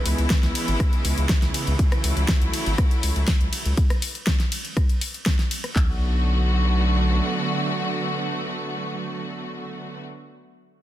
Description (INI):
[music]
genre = progressive house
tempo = 121 BPM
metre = 4/4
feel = straight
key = B dorian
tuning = A4 = 440 Hz
[part]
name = rich studio string section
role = sustained chords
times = 0.0-10.0 s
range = C#3 to F#4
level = -26 LUFS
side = right 1 dB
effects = sidechain pumping
[part]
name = saturated sub bass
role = bass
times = 0.1-7.2 s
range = G#1 to C#2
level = -22 LUFS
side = equal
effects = sidechain pumping
[part]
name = pop drum kit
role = drums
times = 0.1-5.7 s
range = hi-hat, ride cymbal, rim click, snare drum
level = -27 LUFS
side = equal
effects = small room reverb, soft clipping on snare
[part]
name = pop drum kit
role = drums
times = 0.3-5.9 s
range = handclaps, kick drum, toms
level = -21 LUFS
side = equal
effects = small room reverb
[sound]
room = little or no reverb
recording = dense, heavily limited modern master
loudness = -20 LUFS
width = side -13 dB against mid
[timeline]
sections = 0.0-5.8 A section; 5.8-9.7 B section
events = drop 0.0-5.8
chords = 0.0 C#m7; 1.8 A6; 3.8 N.C.; 5.8 Bm7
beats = 0.30 0.80 1.30 | 1.79 2.29 2.78 3.28 | 3.77 4.27 4.77 5.26 | 5.76 6.25 6.75 7.25 | 7.74 8.24 8.73 9.23